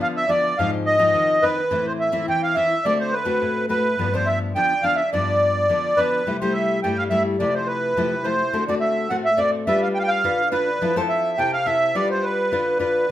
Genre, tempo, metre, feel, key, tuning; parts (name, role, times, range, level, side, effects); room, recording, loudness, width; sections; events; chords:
samba; 105 BPM; 4/4; straight; A4 = 440 Hz
accordion; melody; 0.0-13.1 s; B4 to G5; -20 LUFS; right 1 dB; light tremolo tuning
nylon-string guitar; accompaniment; 0.0-13.1 s; G2 to B4; -24 LUFS; left 3 dB
moderate large studio reverb, RT60 0.8 s; minimal, uncompressed stereo recording; -18 LUFS; side -12 dB against mid
0.0-13.1 A section
0.0 G7 (rootless); 0.6 Ab6; 1.7 Am; 2.8 D7; 4.0 G7; 6.3 C6; 7.4 Fmaj7/C; 8.5 D7; 9.7 G7; 10.8 Fmaj7; 12.0 G7